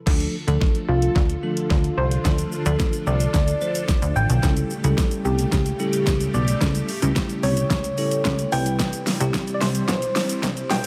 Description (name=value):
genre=dance-pop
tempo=110 BPM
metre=4/4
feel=straight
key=D dorian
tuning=A4 = 441 Hz
part: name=bell-like tine electric piano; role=accompaniment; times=0.1-10.7 s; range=F3 to C5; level=-31 LUFS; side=equal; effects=phaser, sidechain pumping
part: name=string machine, cellos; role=sustained chords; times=0.1-10.9 s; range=C3 to A4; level=-33 LUFS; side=equal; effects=ensemble chorus, sidechain pumping
part: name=plucky analog bass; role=bass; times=0.1-10.9 s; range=A1 to D2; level=-25 LUFS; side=equal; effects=sidechain pumping
part: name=pop drum kit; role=drums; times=0.1-10.9 s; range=crash cymbal, hi-hat, kick drum, shaker, snare drum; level=-26 LUFS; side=equal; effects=overdrive
part: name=soft struck synth lead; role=melody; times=0.9-10.9 s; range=F4 to G5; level=-29 LUFS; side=equal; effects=chorus, phaser, tape echo
room=light reverb, digital ambience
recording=high-pass filter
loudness=-22 LUFS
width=mono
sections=0.1-10.9 A section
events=build-up 0.1-10.9; drum fill 0.1-10.9; filter sweep 0.1-10.9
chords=0.1 Dm; 4.4 A7; 8.5 Cmaj7